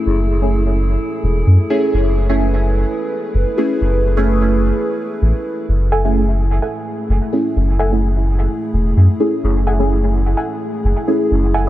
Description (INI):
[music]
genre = dub techno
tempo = 128 BPM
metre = 4/4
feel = swing 53% on 16ths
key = F# minor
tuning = A4 = 440 Hz
[part]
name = dark analog pad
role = sustained chords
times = 0.0-11.7 s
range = A3 to B4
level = -24 LUFS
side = equal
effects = chorus
[part]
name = deep mellow chord stab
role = stabs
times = 0.0-11.7 s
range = A3 to G#4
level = -20 LUFS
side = equal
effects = chorus, phaser, dub echo
[part]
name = metallic inharmonic drone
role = texture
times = 0.0-5.7 s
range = A3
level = -29 LUFS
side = right 2 dB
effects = chorus, built-in reverb
[part]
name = soft dub sub bass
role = bass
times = 0.1-11.7 s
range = E1 to F#2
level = -15 LUFS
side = equal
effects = none
[part]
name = filtered dub chord stab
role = riff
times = 5.9-11.7 s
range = A4 to G#5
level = -25 LUFS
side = right 1 dB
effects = wide subtle chorus, cassette tape, dub echo
[sound]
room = light reverb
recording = none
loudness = -14 LUFS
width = side -14 dB against mid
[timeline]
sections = 0.0-5.7 A section; 5.7-11.7 A section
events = none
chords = 0.0 F#m9